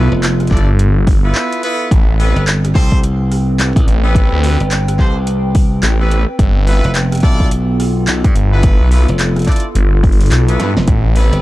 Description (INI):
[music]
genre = glitch hop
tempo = 107 BPM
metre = 4/4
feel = swing 60% on 16ths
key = unclear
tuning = A4 = 440 Hz
[part]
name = brilliant horn section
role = stabs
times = 0.0-11.4 s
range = B3 to D5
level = -22 LUFS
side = equal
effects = sidechain pumping, analog delay
[part]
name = phased detuned saw bass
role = bass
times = 0.0-11.3 s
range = G1 to G2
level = -11 LUFS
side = equal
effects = phaser
[part]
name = warbly tape-like pad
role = texture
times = 0.0-11.4 s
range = B3 to G5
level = -22 LUFS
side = right 1 dB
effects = chorus, built-in reverb, sidechain pumping
[part]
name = glassy slap bass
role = bass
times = 0.1-11.4 s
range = F1 to G2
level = -15 LUFS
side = equal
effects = tube saturation
[part]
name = pop drum kit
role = drums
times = 0.2-11.4 s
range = handclaps, hi-hat, rim click, snare drum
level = -21 LUFS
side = equal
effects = overdrive
[part]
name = electronic kick drum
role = drums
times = 0.5-11.0 s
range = none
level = -12 LUFS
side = equal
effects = overdrive
[sound]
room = digital ambience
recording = dry, gritty hardware recording, cassette tape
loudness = -10 LUFS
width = side -17 dB against mid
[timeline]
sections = 0.0-11.4 A section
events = drum fill 10.6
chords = 0.0 G13; 1.9 Am9; 6.4 G13; 10.9 Am9